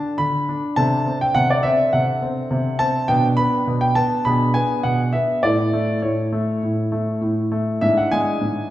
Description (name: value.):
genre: classical-period piano sonatina.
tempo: 102 BPM.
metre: 4/4.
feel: straight.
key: D major.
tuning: A4 = 439 Hz.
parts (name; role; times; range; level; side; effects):
warm grand piano; solo; 0.0-8.7 s; G#2 to B5; -17 LUFS; equal; none.
room: wet recital hall reverb, RT60 1.6 s.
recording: heard from further back in the room.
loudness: -17 LUFS.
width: side -14 dB against mid.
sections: 0.0-8.7 A section.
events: none.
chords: 0.0 D5; 0.8 D7/C; 3.1 Bm7; 4.3 Bm6; 5.4 A; 7.8 E7/G#.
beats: 0.19 | 0.78 1.36 1.94 2.52 | 3.10 3.68 4.26 4.85 | 5.44 6.04 6.63 7.22 | 7.82 8.40.